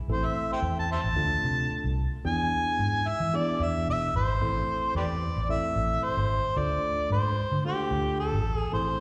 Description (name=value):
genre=straight-eighth soul blues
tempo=111 BPM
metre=4/4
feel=straight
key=A harmonic minor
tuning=A4 = 440 Hz
part: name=mellow harmonica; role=melody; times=0.1-9.0 s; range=G4 to A5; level=-31 LUFS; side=equal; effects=overdrive, slapback echo
part: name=tine electric piano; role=accompaniment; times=0.1-9.0 s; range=A3 to A4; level=-37 LUFS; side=equal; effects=slapback echo
part: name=vintage muted fingered electric bass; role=bass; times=0.1-8.9 s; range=E1 to E3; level=-31 LUFS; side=equal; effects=none
room=light reverb, small room ambience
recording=live gig heard through the venue's PA, recital hall reverb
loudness=-28 LUFS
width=mono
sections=0.0-4.4 A section; 4.4-9.0 B section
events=harmonica solo 0.0-4.4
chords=0.1 Am; 1.2 Dm; 2.2 E7; 4.4 Am; 6.6 Dm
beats=| 0.09 0.63 1.17 1.71 | 2.25 2.79 3.33 3.87 | 4.41 4.95 5.49 6.03 | 6.57 7.11 7.65 8.19 | 8.73